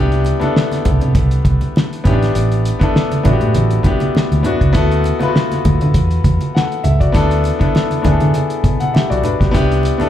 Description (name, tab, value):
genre	lush 1970s-style soul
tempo	100 BPM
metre	4/4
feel	swing 54% on 16ths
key	D major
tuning	A4 = 440 Hz
part	clear grand piano	accompaniment	0.0-10.1 s	B3 to F#5	-18 LUFS	left 3 dB	slapback echo
part	vintage muted fingered electric bass	bass	0.0-10.0 s	A1 to D3	-15 LUFS	equal	none
part	cloth-damped thuddy drum kit	drums	0.1-10.1 s	hi-hat, kick drum, snare drum	-17 LUFS	equal	none
part	congas	percussion	0.2-10.1 s	none	-22 LUFS	right 4 dB	none
room	small room ambience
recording	live gig heard through the venue's PA, club reverb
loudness	-12 LUFS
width	side -11 dB against mid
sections	0.0-10.1 A section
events	none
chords	0.0 Cmaj7; 2.1 A9sus4; 4.8 D69; 7.1 Gmaj13; 9.5 Cmaj7